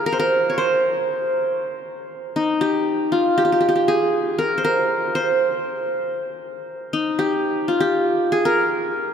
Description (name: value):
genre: turkish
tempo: 236 BPM (eighths)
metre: 9/8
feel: straight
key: C minor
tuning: A4 = 440 Hz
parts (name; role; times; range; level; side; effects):
- qanun; solo; 0.0-9.1 s; Eb4 to Db5; -18 LUFS; equal; none
room: wet cathedral reverb, RT60 6.3 s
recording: in a vast, echoing space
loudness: -18 LUFS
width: side -8 dB against mid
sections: 0.0-9.1 A section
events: none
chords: none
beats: | 0.07 0.32 0.58 0.83 1.08 1.34 1.59 1.84 2.10 | 2.35 2.61 2.86 3.12 3.37 3.62 3.88 4.13 4.38 | 4.64 4.89 5.15 5.40 5.65 5.91 6.16 6.42 6.67 | 6.92 7.18 7.43 7.68 7.94 8.19 8.45 8.70 8.96